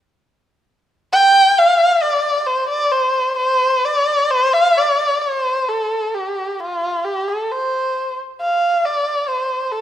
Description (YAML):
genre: chinese traditional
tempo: 67 BPM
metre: 4/4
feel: rubato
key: C zhi mode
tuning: A4 = 438 Hz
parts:
  - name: warm erhu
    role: solo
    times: 1.1-9.8 s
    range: F4 to G5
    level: -15 LUFS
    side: equal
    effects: none
room: moderate scoring stage reverb, RT60 1.6 s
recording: minimal, uncompressed stereo recording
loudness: -15 LUFS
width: side -11 dB against mid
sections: 0.0-4.7 A section; 4.7-9.8 B section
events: none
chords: none